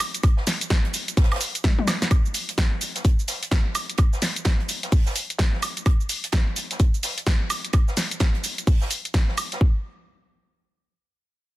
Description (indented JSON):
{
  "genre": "house",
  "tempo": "128 BPM",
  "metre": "4/4",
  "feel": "swing 62% on 16ths",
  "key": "none",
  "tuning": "none",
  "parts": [
    { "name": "house drum kit", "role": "drums", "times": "0.0-9.6 s", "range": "hi-hat, shaker, snare drum, toms, woodblock", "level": "-25 LUFS", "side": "equal", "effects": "none" },
    { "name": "open jazz drum kit", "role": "drums", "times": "0.0-9.6 s", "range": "hi-hat, snare drum", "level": "-35 LUFS", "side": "right 2 dB", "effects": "sidechain pumping on hats, high-pass filter on hats, high-pass filter on snare, high-pass filter on room" },
    { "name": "electronic kick drum", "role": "drums", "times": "0.2-9.7 s", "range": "none", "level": "-20 LUFS", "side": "equal", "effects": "none" }
  ],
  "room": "small room ambience",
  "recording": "dense, heavily limited modern master",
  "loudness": "-20 LUFS",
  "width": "side -17 dB against mid",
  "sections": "0.0-2.1 A section; 2.1-9.6 B section; 9.6-11.5 C section",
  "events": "drop 0.0-2.1; drum fill 1.6-2.1",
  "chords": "none"
}